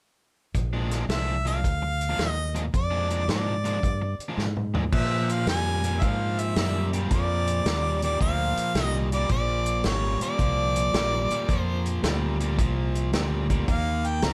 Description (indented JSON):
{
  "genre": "electric blues shuffle",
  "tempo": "110 BPM",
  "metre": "4/4",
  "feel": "swing 67% on 8ths",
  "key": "Bb mixolydian",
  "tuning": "A4 = 440 Hz",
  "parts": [
    { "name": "fingered electric bass", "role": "bass", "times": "0.5-14.3 s", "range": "Ab1 to Bb2", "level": "-30 LUFS", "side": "equal", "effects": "none" },
    { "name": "warm soul drum kit", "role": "drums", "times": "0.5-14.3 s", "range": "crash cymbal, hi-hat, kick drum, snare drum, toms", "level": "-31 LUFS", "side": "equal", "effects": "none" },
    { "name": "cranked stack guitar", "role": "riff", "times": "0.7-14.3 s", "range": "Bb2 to D4", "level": "-32 LUFS", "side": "equal", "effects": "overdrive" },
    { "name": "clear harmonica", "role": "melody", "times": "1.1-14.3 s", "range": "Db5 to Bb5", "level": "-31 LUFS", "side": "equal", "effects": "none" }
  ],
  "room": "moderate club reverb, RT60 0.5 s",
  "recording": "none",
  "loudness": "-26 LUFS",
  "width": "mono",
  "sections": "0.5-4.9 A section; 4.9-14.3 B section",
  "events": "drum fill 4.4-4.9",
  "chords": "0.5 Bb7; 4.9 Bb69; 13.7 Eb13",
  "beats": "| 0.55 1.09 1.64 2.19 | 2.73 3.28 3.83 4.38 | 4.92 5.47 6.02 6.56 | 7.11 7.66 8.21 8.75 | 9.30 9.85 10.39 10.94 | 11.49 12.04 12.58 13.13 | 13.68 14.23"
}